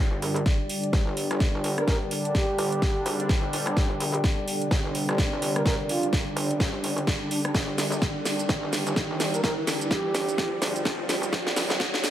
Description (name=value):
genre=bass house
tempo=127 BPM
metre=4/4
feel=swing 59% on 16ths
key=unclear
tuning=A4 = 440 Hz
part: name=sweeping resonant pad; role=sustained chords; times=0.0-12.1 s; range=D3 to D4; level=-31 LUFS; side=right 1 dB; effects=chorus, sidechain pumping
part: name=metallic wobble bass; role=bass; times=0.0-11.8 s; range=G1 to Bb1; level=-33 LUFS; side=equal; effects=chorus, tube saturation, sidechain pumping, high-pass filter
part: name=riser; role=sound effects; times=2.2-12.1 s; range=none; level=-35 LUFS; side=equal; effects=none
part: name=warbly tape-like pad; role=texture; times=0.0-12.1 s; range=G4 to G5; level=-34 LUFS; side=left 1 dB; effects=chorus, built-in reverb, sidechain pumping
part: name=house drum kit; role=drums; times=0.2-12.1 s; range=hi-hat, rim click, shaker, snare drum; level=-29 LUFS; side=equal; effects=none
part: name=electronic kick drum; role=drums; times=0.5-11.9 s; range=none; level=-25 LUFS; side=equal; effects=none
part: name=breathy flute-like synth lead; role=melody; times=1.8-10.6 s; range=D4 to Bb4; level=-32 LUFS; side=right 1 dB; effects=chorus, diffuse ambient delay
room=moderate plate reverb, RT60 1.8 s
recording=dreamy mix soaked in reverb, high-pass filter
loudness=-23 LUFS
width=side -12 dB against mid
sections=0.0-12.1 A section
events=build-up 0.0-12.1; drum fill 0.0-12.1; filter sweep 0.0-12.1; riser 2.2-12.1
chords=0.0 G5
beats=0.46 0.93 1.41 | 1.88 2.35 2.82 3.29 | 3.77 4.24 4.71 5.18 | 5.66 6.13 6.60 7.07 | 7.55 8.02 8.49 8.96 | 9.44 9.91 10.38 10.85 | 11.33 11.80